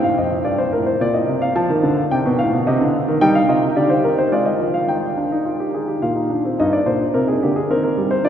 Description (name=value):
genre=classical, baroque-style 3-part fugue for grand piano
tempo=108 BPM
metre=3/4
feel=straight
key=Eb major from 3.2 s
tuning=A4 = 440 Hz
part: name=warm concert grand piano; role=solo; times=0.0-8.3 s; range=F2 to A5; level=-16 LUFS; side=equal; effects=none
room=wet cathedral reverb, RT60 5.6 s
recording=none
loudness=-16 LUFS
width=side -9 dB against mid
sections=0.0-6.6 A section; 6.6-8.3 B section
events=none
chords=0.0 F7; 1.0 Bb; 1.6 G7; 2.7 Cm; 3.2 Eb; 4.3 Fm7/Ab; 4.9 Ebadd9; 6.0 Bb; 6.6 Eb/G; 7.7 Eb